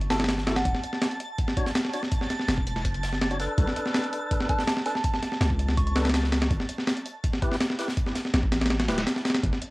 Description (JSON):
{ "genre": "drum and bass, jungle", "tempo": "164 BPM", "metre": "4/4", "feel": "straight", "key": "unclear", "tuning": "A4 = 440 Hz", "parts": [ { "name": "long sustained 808-style bass", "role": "bass", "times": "0.0-9.5 s", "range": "D1 to C#2", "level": "-27 LUFS", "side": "equal", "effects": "none" }, { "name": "breakbeat sampler-style drum kit", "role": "drums", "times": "0.0-9.7 s", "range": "hi-hat, kick drum, snare drum", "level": "-25 LUFS", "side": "equal", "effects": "cassette tape" }, { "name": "twinkling granular texture", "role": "texture", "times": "0.2-9.4 s", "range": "A5 to A6", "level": "-38 LUFS", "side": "right 2 dB", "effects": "built-in reverb, cassette tape" }, { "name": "soft synth bell", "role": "melody", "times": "0.1-0.7, 4.5-5.9 s", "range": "F#5 to C#6", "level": "-33 LUFS", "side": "right 1 dB", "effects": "chorus, cassette tape, dub echo" }, { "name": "tonewheel organ", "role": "stabs", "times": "0.1-9.0 s", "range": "D4 to C#5", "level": "-34 LUFS", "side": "left 1 dB", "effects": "overdrive, fast rotary speaker, cassette tape, dub echo" }, { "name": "unplugged drum kit", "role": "drums", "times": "0.1-9.3 s", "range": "hi-hat, snare drum", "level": "-41 LUFS", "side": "left 1 dB", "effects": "high-pass filter on hats, cassette tape, high-pass filter on snare, high-pass filter on room" } ], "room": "light reverb", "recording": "home recording on cassette", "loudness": "-24 LUFS", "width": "side -21 dB against mid", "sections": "0.0-9.4 A section", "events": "drop 0.0-9.4", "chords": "0.0 F#m7; 0.7 Dmaj7; 3.6 Bm7; 6.5 G6", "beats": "0.29 | 0.65 1.02 1.39 1.75 | 2.12 2.48 2.85 3.21 | 3.58 3.95 4.31 4.68 | 5.04 5.41 5.78 6.14 | 6.51 6.87 7.24 7.61 | 7.97 8.34 8.70 9.07 | 9.44" }